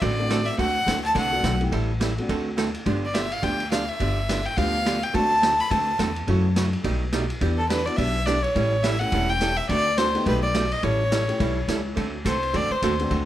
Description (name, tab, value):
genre	country, western swing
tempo	211 BPM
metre	4/4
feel	swing 60% on 8ths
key	D mixolydian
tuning	A4 = 440 Hz
part	clear fiddle	melody	0.0-13.1 s	A4 to B5	-24 LUFS	left 1 dB	none
part	archtop guitar, miked and amplified	accompaniment	0.0-13.3 s	B2 to A4	-28 LUFS	right 5 dB	none
part	upright bass	bass	0.0-13.3 s	E1 to F#2	-26 LUFS	left 1 dB	none
part	vintage drum kit	drums	0.0-13.2 s	hi-hat, kick drum, ride cymbal, snare drum	-30 LUFS	left 1 dB	none
part	dark upright piano	accompaniment	0.2-2.6, 4.6-13.3 s	G3 to A4	-32 LUFS	left 2 dB	none
room	light reverb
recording	none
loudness	-21 LUFS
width	side -12 dB against mid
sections	0.0-12.0 A section; 12.0-13.3 B section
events	fiddle solo 12.0-13.3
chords	0.0 D7; 1.7 Am7; 2.3 D7; 2.9 G7; 5.1 D7; 6.3 F#m7; 6.8 Baug7; 7.4 Em7; 8.6 A7; 9.7 D7; 10.3 B7alt; 10.8 A7; 12.0 D7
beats	0.01 0.29 | 0.58 0.86 1.15 1.43 | 1.72 2.00 2.29 2.57 | 2.86 3.14 3.43 3.71 | 4.00 4.28 4.57 4.85 | 5.14 5.42 5.71 5.99 | 6.28 6.56 6.85 7.13 | 7.42 7.70 7.98 8.27 | 8.55 8.84 9.12 9.41 | 9.69 9.98 10.26 10.54 | 10.83 11.11 11.40 11.68 | 11.97 12.25 12.54 12.82 | 13.11